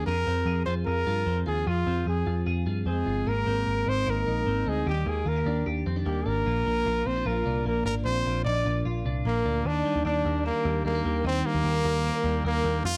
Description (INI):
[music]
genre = indie pop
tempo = 150 BPM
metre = 4/4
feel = straight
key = Eb major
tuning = A4 = 439 Hz
[part]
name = warm trumpet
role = melody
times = 0.0-13.0 s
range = Bb3 to D5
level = -31 LUFS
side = equal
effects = slapback echo
[part]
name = twelve-string electric guitar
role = arpeggios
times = 0.0-13.0 s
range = F2 to Bb4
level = -34 LUFS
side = equal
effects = lush chorus, slapback echo
[part]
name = vintage muted picked electric bass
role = bass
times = 0.0-13.0 s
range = G1 to G2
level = -31 LUFS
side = equal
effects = none
[part]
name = mellow wooden-headed alto flute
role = second line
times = 2.9-13.0 s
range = G3 to F5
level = -37 LUFS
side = equal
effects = none
[sound]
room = light reverb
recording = none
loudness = -27 LUFS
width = mono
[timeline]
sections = 0.0-9.7 A section; 9.7-13.0 B section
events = none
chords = 0.1 Fm; 3.3 Abadd9; 4.9 Ebmaj7; 6.5 Bb; 9.7 Ebmaj7